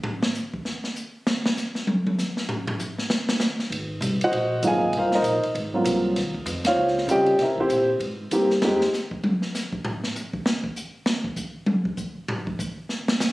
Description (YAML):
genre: jazz piano trio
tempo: 196 BPM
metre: 4/4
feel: swing 61% on 8ths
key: unclear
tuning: A4 = 441 Hz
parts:
  - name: open jazz drum kit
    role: drums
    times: 0.0-13.3 s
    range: hi-hat, kick drum, ride cymbal, snare drum, toms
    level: -26 LUFS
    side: equal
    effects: none
  - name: upright bass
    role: bass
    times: 3.7-8.8 s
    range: Ab1 to Db3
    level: -30 LUFS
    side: equal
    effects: none
  - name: dark upright piano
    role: melody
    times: 4.2-8.8 s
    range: Gb3 to Ab5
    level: -20 LUFS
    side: equal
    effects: plate reverb
room: moderate studio reverb, RT60 0.6 s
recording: recorded on a phone in the room, studio reverb, compression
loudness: -22 LUFS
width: side -19 dB against mid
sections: 0.0-13.3 A section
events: upright piano solo 0.0-13.3; drum solo 0.0-3.7, 8.6-13.3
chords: 0.0 N.C.; 3.7 Ab13; 6.2 Eb13; 7.4 C7; 8.6 N.C.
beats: | 0.04 0.35 0.66 0.96 | 1.27 1.57 1.88 2.19 | 2.50 2.80 3.11 3.41 | 3.72 4.03 4.33 4.64 | 4.95 5.25 5.56 5.87 | 6.17 6.48 6.78 7.09 | 7.40 7.70 8.01 8.31 | 8.62 8.93 9.23 9.54 | 9.84 10.15 10.46 10.76 | 11.07 11.37 11.68 11.98 | 12.29 12.60 12.90 13.21